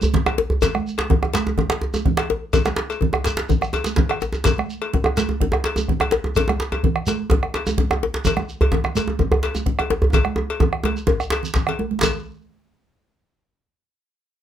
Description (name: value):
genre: west african traditional, West African drum ensemble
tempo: 126 BPM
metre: 4/4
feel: straight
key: none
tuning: none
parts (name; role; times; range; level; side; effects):
- congas; percussion; 0.0-12.2 s; none; -26 LUFS; right 8 dB; none
- djembe; percussion; 0.0-12.2 s; none; -22 LUFS; right 1 dB; none
- shekere; percussion; 0.0-12.2 s; none; -29 LUFS; right 2 dB; none
- bombo; percussion; 0.1-12.2 s; none; -22 LUFS; left 1 dB; none
- cowbell; percussion; 0.3-12.2 s; none; -26 LUFS; left 6 dB; none
- djembe; percussion; 0.4-12.2 s; none; -25 LUFS; left 5 dB; none
room: moderate studio ambience, RT60 0.5 s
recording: none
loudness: -18 LUFS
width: side -10 dB against mid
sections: 0.0-12.0 A section; 12.0-13.9 B section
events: speeding up 0.0-13.9; drum fill 10.1-12.0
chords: none